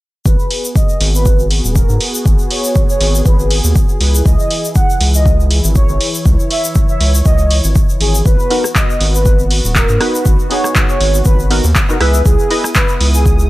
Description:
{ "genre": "deep house", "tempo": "120 BPM", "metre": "4/4", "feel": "swing 55% on 16ths", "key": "G# minor", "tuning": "A4 = 439 Hz", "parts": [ { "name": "warm velvety synth lead", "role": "melody", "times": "0.3-13.5 s", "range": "G#4 to F#5", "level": "-20 LUFS", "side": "equal", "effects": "chorus" }, { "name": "warm analog pad", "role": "sustained chords", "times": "0.3-13.5 s", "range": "E3 to D#6", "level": "-24 LUFS", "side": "equal", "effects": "chorus, sidechain pumping" }, { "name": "round analog bass", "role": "bass", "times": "0.3-13.5 s", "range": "D#1 to G#2", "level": "-13 LUFS", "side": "equal", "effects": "none" }, { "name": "electronic kick drum", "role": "drums", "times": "0.3-13.4 s", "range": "none", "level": "-12 LUFS", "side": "equal", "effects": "none" }, { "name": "egg shaker", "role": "percussion", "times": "0.3-13.5 s", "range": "none", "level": "-24 LUFS", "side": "left 2 dB", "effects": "none" }, { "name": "punchy analog drum machine", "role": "drums", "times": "0.5-13.1 s", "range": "handclaps, hi-hat, rim click", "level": "-18 LUFS", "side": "equal", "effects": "none" }, { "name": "percussive organ stab", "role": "stabs", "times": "8.5-12.7 s", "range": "B3 to E5", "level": "-19 LUFS", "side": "equal", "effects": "analog chorus, dub echo" } ], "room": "little or no reverb", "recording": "none", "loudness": "-10 LUFS", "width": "side -18 dB against mid", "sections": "0.3-13.5 A section", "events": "none", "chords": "0.3 G#m7; 4.0 C#m; 8.3 G#m9; 12.0 C#m9" }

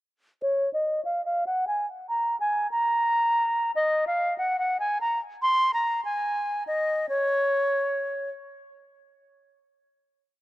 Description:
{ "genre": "hip hop, drill", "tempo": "144 BPM", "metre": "4/4", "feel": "half-time", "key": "Bb minor", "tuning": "A4 = 440 Hz", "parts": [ { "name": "reedy concert flute", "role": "solo", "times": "0.4-8.3 s", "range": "Db5 to C6", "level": "-23 LUFS", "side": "equal", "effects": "low-pass filter, analog delay" } ], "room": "small room ambience", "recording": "dry, gritty hardware recording, transformer saturation", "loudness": "-23 LUFS", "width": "side -17 dB against mid", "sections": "0.4-7.1 breakdown; 7.1-10.4 final note", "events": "filter sweep on flute 0.4-7.1", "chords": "none" }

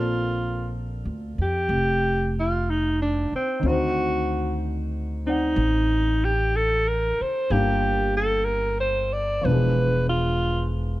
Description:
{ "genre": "jazz ballad", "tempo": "62 BPM", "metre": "4/4", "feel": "swing 68% on 8ths", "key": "unclear", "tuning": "A4 = 440 Hz", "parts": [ { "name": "breathy alto saxophone", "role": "melody", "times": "0.0-10.7 s", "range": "C4 to D5", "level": "-24 LUFS", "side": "equal", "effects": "none" }, { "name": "warm concert grand piano", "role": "accompaniment", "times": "0.0-11.0 s", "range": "D3 to F#5", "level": "-29 LUFS", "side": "left 2 dB", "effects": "none" }, { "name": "upright bass", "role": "bass", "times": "0.0-11.0 s", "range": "E1 to F2", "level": "-25 LUFS", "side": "equal", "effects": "none" } ], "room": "light reverb", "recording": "none", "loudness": "-21 LUFS", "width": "side -16 dB against mid", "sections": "0.0-11.0 A section", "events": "none", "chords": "0.0 Bbmaj9; 3.6 D7b9; 7.5 Gm7; 9.4 E7b9" }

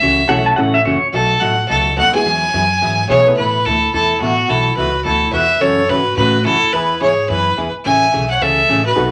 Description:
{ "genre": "country, western swing", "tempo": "214 BPM", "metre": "4/4", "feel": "swing 60% on 8ths", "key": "A major", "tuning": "A4 = 440 Hz", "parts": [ { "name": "clear fiddle", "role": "melody", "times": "0.0-9.1 s", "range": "F#4 to G#5", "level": "-17 LUFS", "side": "equal", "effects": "none" }, { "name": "hollow-body jazz guitar", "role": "accompaniment", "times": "0.0-9.1 s", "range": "B2 to A4", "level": "-24 LUFS", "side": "equal", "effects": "none" }, { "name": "upright bass", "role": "bass", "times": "0.0-9.1 s", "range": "F#1 to B2", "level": "-24 LUFS", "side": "equal", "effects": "none" }, { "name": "pedal steel guitar", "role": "second line", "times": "0.3-1.1 s", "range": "C#5 to A5", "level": "-18 LUFS", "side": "equal", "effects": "none" }, { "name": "honky-tonk upright piano", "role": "accompaniment", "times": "0.3-3.4, 9.0-9.1 s", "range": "G#3 to B4", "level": "-22 LUFS", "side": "equal", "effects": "none" }, { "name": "growling clarinet", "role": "second line", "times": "3.1-9.1 s", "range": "B3 to E5", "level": "-24 LUFS", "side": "equal", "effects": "none" } ], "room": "wet studio ambience, RT60 0.5 s", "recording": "none", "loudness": "-15 LUFS", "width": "mono", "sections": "0.0-3.4 A section; 3.4-9.1 B section", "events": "none", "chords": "0.0 F#m7; 1.1 B7; 2.3 Eadd9; 3.4 Asus2; 4.5 B7sus4; 5.6 F#m7; 6.7 E; 7.8 Amaj7" }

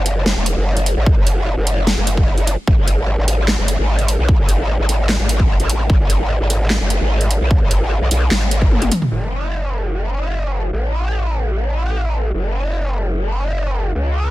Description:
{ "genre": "heavy wobble dubstep", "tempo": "149 BPM", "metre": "4/4", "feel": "half-time", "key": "F# minor", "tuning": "A4 = 439 Hz", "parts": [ { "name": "growl bass", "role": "bass", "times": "0.0-14.3 s", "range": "E1 to C#2", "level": "-17 LUFS", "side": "equal", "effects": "chorus, overdrive" }, { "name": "dubstep drum kit", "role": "drums", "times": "0.1-9.2 s", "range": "crash cymbal, handclaps, hi-hat, snare drum, toms", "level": "-20 LUFS", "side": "equal", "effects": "low-pass filter on toms, small room ambience, low-pass filter on cymbals, low-pass filter on hats, low-pass filter on snare" }, { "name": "electronic kick drum", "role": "drums", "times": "1.1-8.7 s", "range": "none", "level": "-15 LUFS", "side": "equal", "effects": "small room ambience" } ], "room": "little or no reverb", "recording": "dense, heavily limited modern master", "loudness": "-15 LUFS", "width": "side -17 dB against mid", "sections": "0.0-9.1 A section; 9.1-14.3 B section", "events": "drop 0.0-9.1; drum fill 8.7-9.1", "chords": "none" }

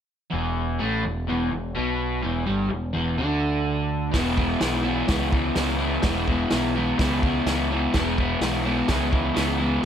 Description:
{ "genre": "garage rock duo or trio", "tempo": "126 BPM", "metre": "4/4", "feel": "straight", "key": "E major", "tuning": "A4 = 440 Hz", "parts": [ { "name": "crunchy overdriven guitar", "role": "riff", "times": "0.3-9.8 s", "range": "E2 to E4", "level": "-23 LUFS", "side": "left 1 dB", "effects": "none" }, { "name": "growling picked electric bass", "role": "bass", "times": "0.3-9.8 s", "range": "E1 to D2", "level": "-28 LUFS", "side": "equal", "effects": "overdrive" }, { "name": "vintage drum kit", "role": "drums", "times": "4.1-9.5 s", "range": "hi-hat, kick drum, snare drum", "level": "-26 LUFS", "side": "equal", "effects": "none" } ], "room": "light reverb, small room ambience", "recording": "none", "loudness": "-21 LUFS", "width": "side -8 dB against mid", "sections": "0.3-4.1 A section; 4.1-9.8 B section", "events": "none", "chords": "0.3 E5; 4.1 E" }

